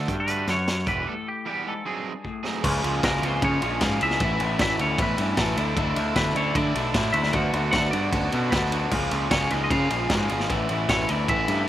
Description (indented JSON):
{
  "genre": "indie rock",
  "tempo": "153 BPM",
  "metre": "4/4",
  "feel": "straight",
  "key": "unclear",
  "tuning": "A4 = 440 Hz",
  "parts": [
    { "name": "twangy electric guitar", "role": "melody", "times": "0.0-11.7 s", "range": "G4 to F#5", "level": "-28 LUFS", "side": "equal", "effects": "none" },
    { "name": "crunchy overdriven guitar", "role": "riff", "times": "0.0-11.7 s", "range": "A2 to G#4", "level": "-30 LUFS", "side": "right 7 dB", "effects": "slapback echo" },
    { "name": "electric guitar through a small old amp", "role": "riff", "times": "0.0-11.7 s", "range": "E2 to G#4", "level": "-29 LUFS", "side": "left 6 dB", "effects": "slapback echo" },
    { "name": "growling picked electric bass", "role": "bass", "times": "0.0-11.6 s", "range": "E1 to D3", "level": "-27 LUFS", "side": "equal", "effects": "overdrive" },
    { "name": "raw garage drum kit", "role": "drums", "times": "0.1-11.6 s", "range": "crash cymbal, hi-hat, kick drum, ride cymbal, snare drum", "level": "-27 LUFS", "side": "equal", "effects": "none" },
    { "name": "mellow tine electric piano", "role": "second line", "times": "3.0-11.7 s", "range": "A3 to F#4", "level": "-37 LUFS", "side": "right 2 dB", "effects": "none" }
  ],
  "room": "little or no reverb",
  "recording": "recorded outdoors, with no room sound",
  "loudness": "-21 LUFS",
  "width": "side -12 dB against mid",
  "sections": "0.0-2.6 A section; 2.6-11.7 B section",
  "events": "break 1.1-2.6; drum fill 2.2-2.6",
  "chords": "0.0 D; 0.9 Em; 1.9 G#7; 2.6 C#6; 4.2 Aadd9; 5.6 Dsus2; 7.3 Bm/D; 8.9 C#6; 10.5 Aadd9"
}